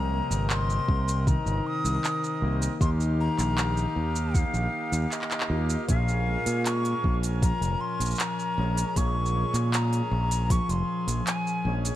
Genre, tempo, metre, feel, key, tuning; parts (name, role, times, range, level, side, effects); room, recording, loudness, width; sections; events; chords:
folktronica; 78 BPM; 4/4; straight; Bb dorian; A4 = 445 Hz
breathy jazz flute; melody; 0.0-11.7 s; Eb5 to Eb6; -31 LUFS; left 2 dB; vintage 12-bit sampler grit, tape echo
accordion; sustained chords; 0.0-12.0 s; C4 to Ab5; -37 LUFS; right 1 dB
concert harp; arpeggios; 0.0-12.0 s; Bb2 to Ab4; -32 LUFS; left 2 dB
growling fingered electric bass; bass; 0.0-11.9 s; F1 to Bb2; -27 LUFS; right 1 dB; overdrive
organic electronic drum kit; drums; 0.3-12.0 s; handclaps, hi-hat, shaker; -32 LUFS; right 1 dB
electronic kick drum; drums; 0.9-10.7 s; -25 LUFS; equal
small room ambience; vinyl crackle; -24 LUFS; side -13 dB against mid
0.0-12.0 A section
0.0 Cm7; 2.8 Ebadd9; 5.9 Bbm7